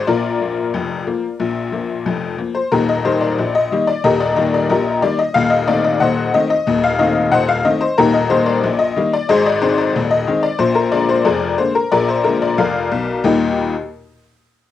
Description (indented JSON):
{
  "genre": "ragtime piano",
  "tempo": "91 BPM",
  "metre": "2/4",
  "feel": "straight",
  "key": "Eb major",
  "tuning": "A4 = 441 Hz",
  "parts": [
    { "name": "tack piano", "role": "solo", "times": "0.0-13.7 s", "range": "Eb1 to Gb5", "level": "-14 LUFS", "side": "left 4 dB", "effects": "cassette tape" }
  ],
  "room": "moderate small room reverb, RT60 0.5 s",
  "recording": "home recording on cassette",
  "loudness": "-14 LUFS",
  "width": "side -12 dB against mid",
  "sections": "0.0-13.2 A section; 13.2-14.6 B section",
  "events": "none",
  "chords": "0.1 Bb; 2.7 Eb; 5.4 Ebdim7; 8.0 Eb; 9.3 Ab; 10.6 Bb7; 13.2 Eb"
}